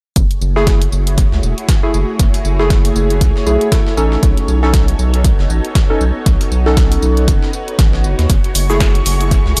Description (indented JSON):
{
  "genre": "deep house",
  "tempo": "118 BPM",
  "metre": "4/4",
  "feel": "swing 58% on 16ths",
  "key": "F# dorian",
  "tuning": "A4 = 444 Hz",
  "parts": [
    { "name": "soft string machine", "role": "sustained chords", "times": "0.4-9.6 s", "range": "A3 to C#5", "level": "-27 LUFS", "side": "equal", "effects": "phaser, ensemble chorus, sidechain pumping" },
    { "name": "round analog bass", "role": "bass", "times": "0.2-9.6 s", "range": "E1 to D#2", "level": "-18 LUFS", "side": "equal", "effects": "none" },
    { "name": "breakbeat sampler-style drum kit", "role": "drums", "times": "0.2-9.6 s", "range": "hi-hat, snare drum, tambourine", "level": "-31 LUFS", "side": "equal", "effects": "overdrive, sidechain pumping on perc, high-pass filter on perc, high-pass filter on snare, sidechain pumping on hats, high-pass filter on hats, high-pass filter on room, dub echo" },
    { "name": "electronic kick drum", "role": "drums", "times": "0.2-9.4 s", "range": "none", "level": "-16 LUFS", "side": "equal", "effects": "none" },
    { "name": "punchy analog drum machine", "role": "drums", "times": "0.2-9.6 s", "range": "hi-hat, shaker, snare drum", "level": "-24 LUFS", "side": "equal", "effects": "none" },
    { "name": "warm analog keys", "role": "stabs", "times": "0.6-8.9 s", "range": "A3 to A4", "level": "-21 LUFS", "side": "equal", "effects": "chorus, sidechain pumping, dub echo" },
    { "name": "analog string pad", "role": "texture", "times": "8.3-9.6 s", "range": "C#6", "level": "-29 LUFS", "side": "equal", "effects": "ensemble chorus, sidechain pumping" }
  ],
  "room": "little or no reverb",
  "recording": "echo-heavy mix",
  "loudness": "-14 LUFS",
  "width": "mono",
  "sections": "0.2-9.6 A section",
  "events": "none",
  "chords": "0.2 F#m9; 4.2 B9; 8.3 F#m9"
}